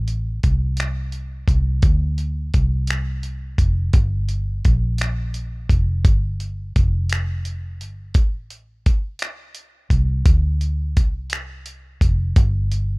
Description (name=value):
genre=slow six-eight R&B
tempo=57 BPM (dotted quarters)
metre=6/8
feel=straight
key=G minor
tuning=A4 = 441 Hz
part: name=vintage muted fingered electric bass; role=bass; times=0.0-13.0 s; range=F1 to D2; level=-21 LUFS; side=equal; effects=none
part: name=dusty soul sampler-style drum kit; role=drums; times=0.1-12.9 s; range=finger snaps, hi-hat, kick drum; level=-18 LUFS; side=equal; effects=none
room=little or no reverb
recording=rough home demo mix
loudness=-18 LUFS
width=side -30 dB against mid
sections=0.0-13.0 A section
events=none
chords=none